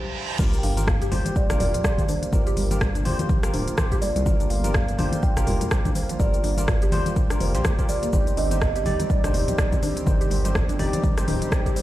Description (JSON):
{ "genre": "afro house", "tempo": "124 BPM", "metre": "4/4", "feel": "swing 58% on 16ths", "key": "G minor", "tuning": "A4 = 440 Hz", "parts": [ { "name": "reverse cymbal and sub drop", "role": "sound effects", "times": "0.0-2.3 s", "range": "none", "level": "-33 LUFS", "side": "right 2 dB", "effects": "none" }, { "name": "warm analog pad", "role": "sustained chords", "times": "0.4-11.8 s", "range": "D3 to G4", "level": "-34 LUFS", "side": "right 2 dB", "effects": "chorus, sidechain pumping" }, { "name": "mallet-like synth pluck", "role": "arpeggios", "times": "0.4-11.8 s", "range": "D3 to G4", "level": "-32 LUFS", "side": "equal", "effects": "wide subtle chorus, sidechain pumping, dub echo" }, { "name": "overdriven tine electric piano", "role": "stabs", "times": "0.4-11.7 s", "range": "Eb4 to D5", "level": "-32 LUFS", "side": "left 2 dB", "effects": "ensemble chorus, sidechain pumping, dub echo" }, { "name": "smooth synth bass", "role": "bass", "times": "0.4-11.4 s", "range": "D1 to C2", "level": "-26 LUFS", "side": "equal", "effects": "sidechain pumping" }, { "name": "afro-pop drum kit", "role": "drums", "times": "0.4-11.8 s", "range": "crash cymbal, hi-hat, rim click, shaker, toms", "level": "-30 LUFS", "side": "left 1 dB", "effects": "none" }, { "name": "electronic kick drum", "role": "drums", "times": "0.4-11.7 s", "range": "none", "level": "-23 LUFS", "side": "equal", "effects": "none" }, { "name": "congas", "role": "percussion", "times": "0.4-11.6 s", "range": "none", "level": "-31 LUFS", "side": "left 1 dB", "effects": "none" }, { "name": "kalimba", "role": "melody", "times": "0.6-11.8 s", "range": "Bb4 to G5", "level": "-31 LUFS", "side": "right 2 dB", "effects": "dub echo" } ], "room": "little or no reverb", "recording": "played on a big sound system in a bare room, large studio reverb", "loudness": "-20 LUFS", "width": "side -15 dB against mid", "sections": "0.4-11.8 A section", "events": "reverse cymbal 0.0-0.4; stop 0.0-0.4; drop 0.4-11.8; impact 0.4-2.3", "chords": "0.4 Gm7; 8.1 Cm" }